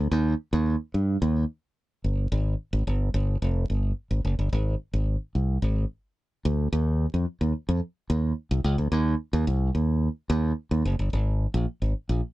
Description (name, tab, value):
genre	funk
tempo	109 BPM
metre	4/4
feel	straight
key	unclear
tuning	A4 = 440 Hz
part	modern bright fingered electric bass	solo	0.0-12.2 s	F1 to G2	-23 LUFS	equal	none
room	light reverb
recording	dry, close 1970s-style studio recording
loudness	-24 LUFS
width	side -17 dB against mid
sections	0.0-6.7 A section; 6.7-12.3 B section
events	none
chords	none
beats	| 0.12 0.67 1.22 1.77 | 2.32 2.87 3.42 3.97 | 4.52 5.07 5.62 6.17 | 6.72 7.27 7.83 8.38 | 8.93 9.48 10.03 10.58 | 11.13 11.68